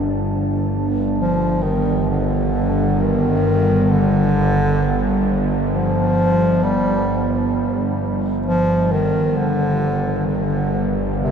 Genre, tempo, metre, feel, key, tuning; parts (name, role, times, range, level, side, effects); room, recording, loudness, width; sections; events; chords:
dark ambient drone; 66 BPM; 4/4; straight; A4 = 439 Hz
deep dark ambient pad; sustained chords; 0.0-11.2 s; G3 to A5; -28 LUFS; left 2 dB
bowed-like drone; drone; 0.0-11.3 s; G1; -19 LUFS; right 1 dB; built-in reverb
warm bass clarinet; melody; 1.2-11.3 s; C3 to G3; -20 LUFS; equal; tape echo
flickering grainy texture; texture; 11.3 s; Bb3 to Bb4; -33 LUFS; left 2 dB
wet huge ambient reverb, RT60 8.1 s; dreamy mix soaked in reverb; -16 LUFS; side -7 dB against mid
0.0-11.2 A section
0.0 G5